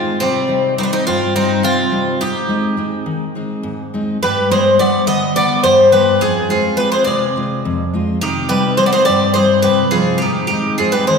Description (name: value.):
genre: greek folk, Greek bouzouki band.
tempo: 210 BPM (eighths).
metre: 7/8.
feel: straight.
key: G phrygian dominant.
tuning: A4 = 443 Hz.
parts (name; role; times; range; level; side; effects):
Greek bouzouki; melody; 0.0-11.2 s; C4 to Eb5; -15 LUFS; equal; none.
Greek bouzouki; second line; 0.0-11.2 s; Eb3 to Eb4; -21 LUFS; right 1 dB; none.
picked steel-string acoustic guitar; accompaniment; 0.0-11.2 s; F2 to F4; -19 LUFS; left 2 dB; none.
room: wet concert hall reverb, RT60 1.8 s.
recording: recorded in a church or concert hall.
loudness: -13 LUFS.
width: side -5 dB against mid.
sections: 0.0-4.2 A section; 4.2-11.2 B section.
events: none.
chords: 0.2 Cm; 2.2 Ab; 4.2 G; 6.2 Fm; 8.2 Cm; 10.2 Ab.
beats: | 0.20 0.48 0.77 1.06 1.34 1.63 1.92 | 2.21 2.49 2.78 3.07 3.35 3.64 3.93 | 4.21 4.50 4.79 5.07 5.36 5.64 5.93 | 6.22 6.50 6.79 7.08 7.36 7.65 7.93 | 8.22 8.51 8.79 9.08 9.36 9.65 9.94 | 10.22 10.51 10.79 11.08.